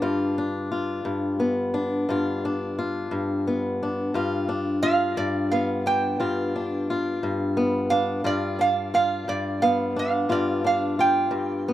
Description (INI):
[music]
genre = acoustic country blues, solo or duo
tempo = 58 BPM (dotted quarters)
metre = 12/8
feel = straight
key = G mixolydian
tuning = A4 = 439 Hz
[part]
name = fingerpicked swing-style acoustic guitar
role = accompaniment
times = 0.0-11.7 s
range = G2 to F4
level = -24 LUFS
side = left 2 dB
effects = slapback echo
[part]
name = metal-body resonator slide guitar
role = melody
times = 4.8-11.7 s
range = D5 to G5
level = -24 LUFS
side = right 4 dB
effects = slapback echo
[sound]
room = light reverb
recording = recorded outdoors, with no room sound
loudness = -22 LUFS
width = side -13 dB against mid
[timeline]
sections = 0.0-11.7 A section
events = resonator guitar played with a steel bar solo 0.0-11.7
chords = 0.0 G7